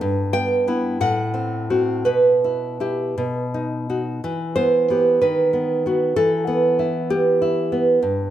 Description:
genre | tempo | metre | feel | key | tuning
romantic piece for solo classical guitar | 52-66 BPM (dotted quarters) | 6/8 | rubato | E minor | A4 = 440 Hz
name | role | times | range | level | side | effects
nylon-string guitar | solo | 0.0-8.3 s | G2 to G5 | -18 LUFS | right 1 dB | none
room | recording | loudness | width
moderate recital hall reverb, RT60 1.6 s | none | -18 LUFS | side -11 dB against mid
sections
0.0-4.2 A section; 4.2-8.3 B section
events
none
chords
0.0 Em/G; 1.0 F#dim/A; 2.1 Em/B; 3.2 B; 4.2 Em; 5.2 B/D#; 6.2 Em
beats
| 0.02 1.03 | 2.08 3.20 | 4.24 5.22 | 6.17 7.10 | 8.02

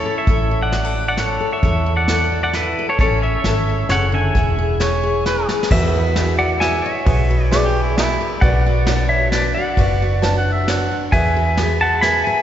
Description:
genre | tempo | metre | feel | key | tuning
honky-tonk and classic country | 133 BPM | 3/4 | straight | unclear | A4 = 441 Hz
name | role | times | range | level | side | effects
pedal steel guitar | melody | 0.0-12.4 s | E4 to B5 | -20 LUFS | equal | none
picked steel-string acoustic guitar | accompaniment | 0.0-12.4 s | F#2 to B4 | -24 LUFS | left 4 dB | none
vintage muted fingered electric bass | bass | 0.3-12.2 s | E1 to E2 | -20 LUFS | equal | none
vintage brush drum kit | drums | 0.3-12.1 s | crash cymbal, hi-hat, kick drum, ride cymbal, snare drum | -22 LUFS | equal | none
mellow harmonica | second line | 4.8-5.5, 7.5-11.0 s | E4 to A5 | -24 LUFS | right 2 dB | none
clear upright piano | accompaniment | 5.7-12.4 s | F#4 to C#6 | -26 LUFS | right 4 dB | none
room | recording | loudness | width
wet church reverb, RT60 2.6 s | recorded in a church or concert hall, nothing above 7.8 kHz | -15 LUFS | side -10 dB against mid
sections
0.0-5.7 A section; 5.7-12.4 B section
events
drum fill 5.5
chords
0.0 A; 4.4 E; 5.7 Eadd9; 8.4 Bmadd9; 11.1 Eadd9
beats
| 0.28 0.73 1.18 | 1.64 2.09 2.54 | 2.99 3.45 3.90 | 4.35 4.80 5.26 | 5.71 6.16 6.61 | 7.07 7.52 7.97 | 8.42 8.87 9.32 | 9.78 10.23 10.68 | 11.13 11.59 12.04

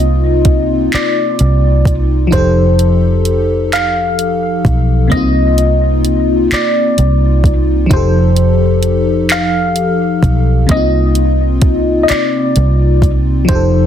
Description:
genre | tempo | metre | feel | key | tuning
slow six-eight R&B | 43 BPM (dotted quarters) | 6/8 | straight | C dorian | A4 = 441 Hz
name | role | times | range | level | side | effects
tine electric piano | melody | 0.0-13.9 s | C5 to F5 | -17 LUFS | left 2 dB | analog chorus, tape echo
FM electric piano with soft pad layer | accompaniment | 0.0-13.9 s | C3 to A4 | -15 LUFS | left 2 dB | chorus, tremolo
vintage muted fingered electric bass | bass | 0.0-13.9 s | F1 to C2 | -13 LUFS | right 1 dB | none
smooth R&B drum kit | drums | 0.4-13.7 s | handclaps, hi-hat, kick drum | -14 LUFS | right 1 dB | none
room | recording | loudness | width
light reverb | dense, heavily limited modern master | -10 LUFS | side -10 dB against mid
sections
0.0-13.9 A section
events
none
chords
0.0 Cm11; 2.3 F9; 5.1 Cm11; 7.9 F9; 10.7 Cm11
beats
0.93 | 2.32 3.72 | 5.11 6.51 | 7.90 9.30 | 10.69 12.09 | 13.48

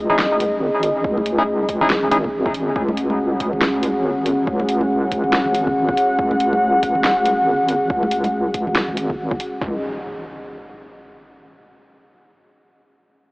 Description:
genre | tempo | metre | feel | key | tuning
deep dubstep | 140 BPM | 4/4 | swing 59% on 16ths, half-time | unclear | A4 = 435 Hz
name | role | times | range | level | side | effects
dark analog pad | sustained chords | 0.0-9.8 s | C#4 to F#5 | -19 LUFS | equal | chorus
deep soft wobble bass | bass | 0.0-9.8 s | G#1 to C#2 | -24 LUFS | equal | chorus
percussive organ stab | stabs | 0.1-2.2 s | C#4 to G#4 | -23 LUFS | left 1 dB | chorus, dub echo
congas | percussion | 0.1-9.1 s | none | -30 LUFS | equal | dub echo
deep house drum kit | drums | 0.2-9.5 s | hi-hat, snare drum | -24 LUFS | equal | none
electronic kick drum | drums | 1.0-9.7 s | none | -27 LUFS | equal | none
impact | sound effects | 9.6-11.3 s | none | -36 LUFS | equal | none
room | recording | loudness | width
light reverb | AM radio sound | -16 LUFS | side -26 dB against mid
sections
0.0-9.6 A section; 9.6-11.3 B section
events
none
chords
0.0 C#sus2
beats
0.19 0.62 | 1.04 1.47 1.90 2.33 | 2.76 3.19 3.62 4.04 | 4.47 4.90 5.33 5.76 | 6.19 6.62 7.04 7.47 | 7.90 8.33 8.76 9.19 | 9.62 10.04 10.47 10.90

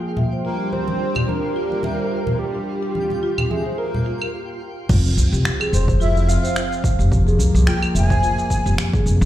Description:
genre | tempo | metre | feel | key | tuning
organic downtempo | 108 BPM | 4/4 | swing 55% on 16ths | F harmonic minor | A4 = 440 Hz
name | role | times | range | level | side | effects
breathy flute-like synth lead | melody | 0.0-8.7 s | G4 to Ab5 | -25 LUFS | right 1 dB | analog chorus, ping-pong delay
warm analog pad | sustained chords | 0.0-9.3 s | F3 to G5 | -26 LUFS | equal | chorus, sidechain pumping
marimba with soft mallets | arpeggios | 0.0-9.1 s | F4 to E5 | -29 LUFS | equal | ping-pong delay
twinkling granular texture | texture | 0.0-4.3 s | F4 to G5 | -38 LUFS | right 1 dB | built-in reverb
congas | percussion | 0.2-4.0 s | none | -25 LUFS | left 1 dB | none
organic electronic drum kit | drums | 1.2-9.3 s | claves, crash cymbal, finger snaps, shaker | -27 LUFS | right 1 dB | none
upright bass | bass | 4.9-9.3 s | F1 to C2 | -17 LUFS | equal | tube saturation, sidechain pumping
electronic kick drum | drums | 4.9-9.0 s | none | -20 LUFS | equal | none
room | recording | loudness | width
moderate digital room reverb, RT60 1.2 s | played on a big sound system in a bare room, large studio reverb | -17 LUFS | side -13 dB against mid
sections
0.0-4.9 A section; 4.9-9.3 B section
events
stop 4.3-4.9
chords
0.4 Gm; 4.9 Fm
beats
| 0.45 1.00 1.56 2.12 | 2.67 3.23 3.78 4.34 | 4.89 5.45 6.00 6.56 | 7.12 7.67 8.23 8.78

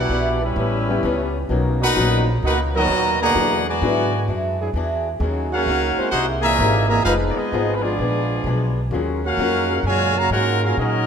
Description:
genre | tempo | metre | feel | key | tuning
jazz | 129 BPM | 4/4 | swing 68% on 8ths | Eb minor | A4 = 441 Hz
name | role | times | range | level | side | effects
bright trumpet section | melody | 0.0-11.1 s | Cb4 to Bb5 | -21 LUFS | equal | none
warm trombone section | second line | 0.0-11.1 s | Bb2 to Gb4 | -25 LUFS | right 3 dB | none
upright bass | bass | 0.0-11.1 s | F1 to Bb2 | -23 LUFS | equal | none
picked swing-style acoustic guitar | accompaniment | 0.1-11.1 s | A2 to G#4 | -27 LUFS | left 2 dB | none
warm baby grand piano | accompaniment | 0.9-9.7 s | F#3 to B4 | -26 LUFS | left 5 dB | none
warm trombone section | sustained chords | 2.7-11.1 s | F#3 to C5 | -29 LUFS | left 1 dB | none
room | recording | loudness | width
moderate concert hall reverb, RT60 2.1 s | none | -17 LUFS | side -7 dB against mid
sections
0.0-11.1 A section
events
none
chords
0.0 Em7; 0.6 A9; 1.5 Bmaj7; 3.3 E9; 5.2 Ebm11; 6.1 C7alt; 7.1 Fm7b5; 8.0 Bb7b9; 8.9 Ebm11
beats
0.10 0.57 1.03 | 1.49 1.96 2.42 2.89 | 3.35 3.81 4.28 4.74 | 5.20 5.67 6.13 6.59 | 7.06 7.52 7.99 8.45 | 8.91 9.38 9.84 10.31 | 10.77

